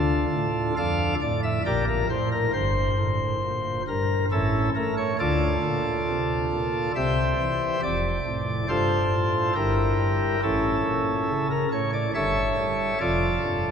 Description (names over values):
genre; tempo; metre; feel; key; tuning
classical, chorale-style piece for pipe organ; 69 BPM; 3/4; rubato; D minor; A4 = 440 Hz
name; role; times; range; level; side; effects
pipe organ, sparkling flutes; solo; 0.0-13.7 s; F1 to F5; -22 LUFS; equal; none
room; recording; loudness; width
wet cathedral reverb, RT60 4.7 s; heard from further back in the room; -22 LUFS; side -7 dB against mid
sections
0.0-13.7 A section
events
none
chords
0.0 Dm; 1.7 Gm/Bb; 2.5 Gm; 4.3 A; 5.2 Dm; 7.0 C; 7.8 F; 9.6 Edim/G; 10.4 A; 12.1 A7/G; 13.0 Dm/F